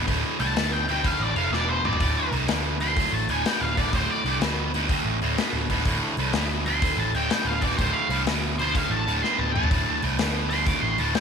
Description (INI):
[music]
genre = blues rock power trio and southern rock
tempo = 125 BPM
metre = 4/4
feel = swing 67% on 8ths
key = D minor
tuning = A4 = 439 Hz
[part]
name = distorted electric guitar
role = riff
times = 0.0-11.2 s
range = D2 to B2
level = -25 LUFS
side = right 1 dB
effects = overdrive
[part]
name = vintage muted picked electric bass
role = bass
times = 0.0-11.1 s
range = D1 to D2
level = -29 LUFS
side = right 1 dB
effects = none
[part]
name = big rock drum kit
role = drums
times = 0.1-11.2 s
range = hi-hat, kick drum, snare drum, toms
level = -28 LUFS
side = left 2 dB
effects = none
[part]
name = octave-fuzz lead guitar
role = melody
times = 0.4-11.2 s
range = C5 to D6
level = -27 LUFS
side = equal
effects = wah, distortion
[sound]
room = moderate spring reverb, RT60 1.9 s, small room ambience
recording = 1960s-style stereo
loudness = -22 LUFS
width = side -6 dB against mid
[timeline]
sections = 0.0-11.2 A section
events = lead electric guitar solo 0.0-11.2; drum fill 1.5-2.0, 9.2-9.7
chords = 0.0 D5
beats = | 0.09 0.57 1.05 1.53 | 2.01 2.49 2.97 3.45 | 3.93 4.41 4.89 5.38 | 5.86 6.34 6.82 7.30 | 7.78 8.27 8.75 9.23 | 9.71 10.19 10.68 11.16